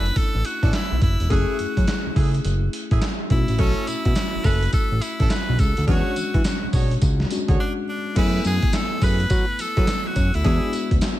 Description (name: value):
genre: R&B, new jack swing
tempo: 105 BPM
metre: 4/4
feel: swing 63% on 16ths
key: F# minor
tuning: A4 = 439 Hz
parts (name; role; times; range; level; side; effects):
- edgy tenor saxophone; melody; 0.0-10.9 s; C#4 to B4; -28 LUFS; equal; slapback echo, digital delay
- tine electric piano; accompaniment; 0.0-11.2 s; F#3 to G#5; -29 LUFS; left 5 dB; slapback echo
- warm horn section; stabs; 0.0-10.7 s; A3 to C#5; -32 LUFS; right 3 dB; slapback echo
- fat analog bass; bass; 0.0-11.0 s; E1 to F#3; -22 LUFS; equal; none
- boom bap sampler-style drum kit; drums; 0.1-11.2 s; crash cymbal, handclaps, hi-hat, kick drum, snare drum, tambourine; -22 LUFS; equal; none
room: light reverb, digital ambience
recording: none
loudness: -19 LUFS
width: side -14 dB against mid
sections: 0.0-8.2 A section; 8.2-11.2 B section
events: break 7.6-8.2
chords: 0.0 Bm11; 1.3 F#m9; 3.3 B9sus4; 5.9 E13; 8.2 F#m11; 10.4 E7